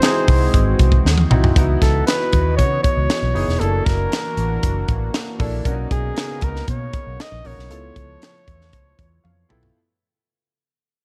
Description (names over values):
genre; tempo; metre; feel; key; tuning
polished 1980s jazz-funk pop; 117 BPM; 4/4; straight; unclear; A4 = 439 Hz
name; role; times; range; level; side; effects
warm flugelhorn; melody; 0.0-9.5 s; G#4 to D#5; -27 LUFS; equal; none
warm concert grand piano; accompaniment; 0.0-9.8 s; A#3 to A5; -28 LUFS; equal; lush chorus
warm analog pad; sustained chords; 0.0-9.7 s; C#3 to D#5; -31 LUFS; equal; chorus
tight funk drum kit; drums; 0.0-9.7 s; hi-hat, kick drum, snare drum, toms; -21 LUFS; equal; none
vintage muted fingered electric bass; bass; 0.3-9.7 s; E1 to C#3; -22 LUFS; equal; none
room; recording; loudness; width
small room ambience; dark, warm production; -18 LUFS; mono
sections
0.0-1.6 A section; 1.6-9.8 B section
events
drum fill 1.0-1.6, 9.2-9.8; fade-out 1.6-9.8; grand piano fill 8.7-9.8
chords
0.0 G#7b13; 1.6 C#m11; 3.6 F#7alt; 5.7 Bmaj9; 7.7 C#7alt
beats
0.02 0.54 1.05 | 1.56 2.07 2.58 3.10 | 3.61 4.12 4.63 5.14 | 5.66 6.17 6.68 7.19 | 7.70 8.21 8.73 9.24